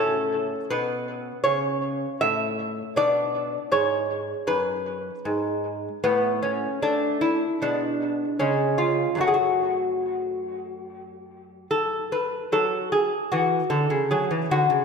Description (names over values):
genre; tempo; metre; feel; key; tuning
classical, baroque-style dance for lute; 70-81 BPM; 4/4; rubato; F# minor; A4 = 440 Hz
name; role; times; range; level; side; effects
lute; solo; 0.0-14.8 s; F#2 to E5; -22 LUFS; equal; tape echo
room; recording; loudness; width
wet lush hall reverb, RT60 1.9 s; dreamy mix soaked in reverb; -22 LUFS; side -5 dB against mid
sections
0.0-12.5 A section; 12.5-14.8 B section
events
none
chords
0.0 A; 3.0 Bm; 6.0 N.C.; 7.6 G#dim/B; 8.4 C#; 9.2 F#m; 12.5 F#5; 14.1 Bmadd11 (rootless)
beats
0.70 1.45 2.21 | 2.96 3.72 4.49 5.26 | 6.04 6.82 7.59 8.38 | 9.20 10.05 10.90 11.72 | 12.53 13.32 14.11